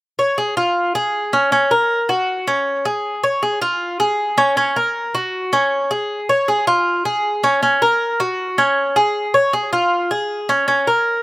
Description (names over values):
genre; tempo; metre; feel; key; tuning
latin; 157 BPM; 4/4; straight; unclear; A4 = 440 Hz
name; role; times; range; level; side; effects
Cuban tres; arpeggios; 0.2-11.2 s; Db4 to Db5; -15 LUFS; equal; none
room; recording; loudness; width
little or no reverb; recorded outdoors, with no room sound; -15 LUFS; side -20 dB against mid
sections
0.0-11.2 A section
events
none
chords
none